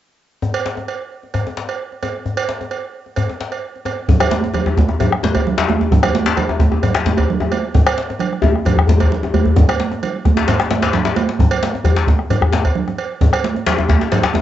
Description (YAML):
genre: west african traditional, West African drum ensemble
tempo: 131 BPM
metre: 4/4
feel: straight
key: none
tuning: none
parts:
  - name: djembe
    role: percussion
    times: 0.4-14.4 s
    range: none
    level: -22 LUFS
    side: left 3 dB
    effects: none
  - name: cowbell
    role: percussion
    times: 0.5-14.2 s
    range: none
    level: -24 LUFS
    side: right 6 dB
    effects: none
  - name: bombo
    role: percussion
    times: 4.1-14.3 s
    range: none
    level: -17 LUFS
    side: equal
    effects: none
  - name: congas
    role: percussion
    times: 4.1-14.4 s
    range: none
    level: -20 LUFS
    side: right 6 dB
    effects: none
  - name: djembe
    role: percussion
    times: 4.2-14.4 s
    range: none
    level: -18 LUFS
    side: left 3 dB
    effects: none
room: wet studio reverb, RT60 0.5 s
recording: home recording on cassette, nothing above 7.8 kHz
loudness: -14 LUFS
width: side -12 dB against mid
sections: 0.4-4.1 A section; 4.1-14.4 B section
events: drum fill 10.8-11.4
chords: none